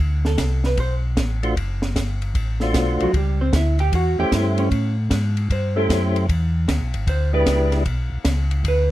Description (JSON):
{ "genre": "soul jazz organ trio", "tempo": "152 BPM", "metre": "4/4", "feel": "swing 65% on 8ths", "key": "A mixolydian", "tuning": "A4 = 438 Hz", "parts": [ { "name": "mellow tonewheel organ", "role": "bass", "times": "0.0-8.9 s", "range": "F#1 to A2", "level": "-20 LUFS", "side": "equal", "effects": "slow rotary speaker" }, { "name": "compact cocktail drum kit", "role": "drums", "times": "0.2-8.8 s", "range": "hi-hat, kick drum, ride cymbal, snare drum", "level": "-25 LUFS", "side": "equal", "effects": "none" }, { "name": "vintage hollow-body jazz guitar", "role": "accompaniment", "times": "0.3-8.9 s", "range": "F#3 to G5", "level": "-23 LUFS", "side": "right 3 dB", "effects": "none" }, { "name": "percussive tonewheel organ", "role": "melody", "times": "1.4-7.8 s", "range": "G#3 to C5", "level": "-22 LUFS", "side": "left 1 dB", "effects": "slow rotary speaker" } ], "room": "little or no reverb", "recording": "close, detailed microphones", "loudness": "-18 LUFS", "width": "side -15 dB against mid", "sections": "0.0-8.9 A section", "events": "hollow-body jazz guitar solo 0.0-8.9", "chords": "0.0 D7#9; 3.1 A7#9; 6.3 E7#9", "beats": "0.39 0.78 1.17 | 1.56 1.96 2.35 2.75 | 3.14 3.53 3.92 4.32 | 4.71 5.11 5.50 5.89 | 6.29 6.68 7.08 7.47 | 7.86 8.26 8.65" }